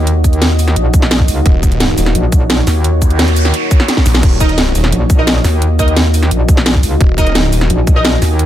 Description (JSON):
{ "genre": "dark technical drum and bass", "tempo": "173 BPM", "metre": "4/4", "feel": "straight", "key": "Eb minor", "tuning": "A4 = 441 Hz", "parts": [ { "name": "deep dark ambient pad", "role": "sustained chords", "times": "0.0-8.5 s", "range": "Bb3 to Ab5", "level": "-19 LUFS", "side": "equal", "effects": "chorus, built-in reverb, vintage 12-bit sampler grit, sidechain pumping" }, { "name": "metallic wobble bass", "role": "bass", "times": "0.0-8.5 s", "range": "Bb1 to Eb2", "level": "-13 LUFS", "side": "equal", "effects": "chorus" }, { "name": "drum and bass drum kit", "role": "drums", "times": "0.1-8.5 s", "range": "crash cymbal, hi-hat, shaker, snare drum", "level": "-16 LUFS", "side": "equal", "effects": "overdrive" }, { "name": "electronic kick drum", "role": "drums", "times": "0.2-7.9 s", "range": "none", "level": "-10 LUFS", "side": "equal", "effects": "overdrive" }, { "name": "snarling distorted saw bass", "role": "bass", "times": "1.5-4.9, 7.0-7.7 s", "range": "Eb1 to Bb1", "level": "-14 LUFS", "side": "equal", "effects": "distortion, tube saturation, sidechain pumping" }, { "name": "noise sweep", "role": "sound effects", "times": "3.0-4.2 s", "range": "none", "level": "-23 LUFS", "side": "right 2 dB", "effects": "none" }, { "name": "orchestra-hit-like synth stab", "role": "stabs", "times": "4.4-8.1 s", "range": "Eb4 to Eb5", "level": "-20 LUFS", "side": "right 1 dB", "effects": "built-in reverb, phaser, dub echo" } ], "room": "digital ambience", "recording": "none", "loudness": "-9 LUFS", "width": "side -12 dB against mid", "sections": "0.0-8.5 A section", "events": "noise sweep 3.0-4.2; drum fill 3.9-4.2", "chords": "0.0 Ebm" }